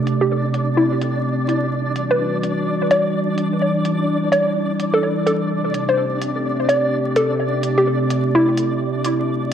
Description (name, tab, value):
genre	future garage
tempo	127 BPM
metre	4/4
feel	swing 62% on 16ths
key	A dorian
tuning	A4 = 439 Hz
part	warbly tape-like pad	sustained chords	0.0-9.5 s	C3 to G4	-21 LUFS	right 1 dB	chorus, built-in reverb
part	flickering grainy texture	texture	0.0-9.5 s	D4 to D5	-25 LUFS	equal	built-in reverb
part	electronic hi-hat	drums	0.1-9.2 s	none	-31 LUFS	equal	low-pass filter on hats, studio reverb, low-pass filter on perc, low-pass filter on snare
part	hollow square pluck	melody	0.2-8.8 s	E4 to D5	-20 LUFS	equal	chorus, cassette tape, tape echo
room	moderate spring reverb, RT60 1.6 s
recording	echo-heavy mix, vinyl crackle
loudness	-17 LUFS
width	side -9 dB against mid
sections	0.0-9.5 A section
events	none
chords	0.0 Am7; 1.7 Em9; 5.5 Am7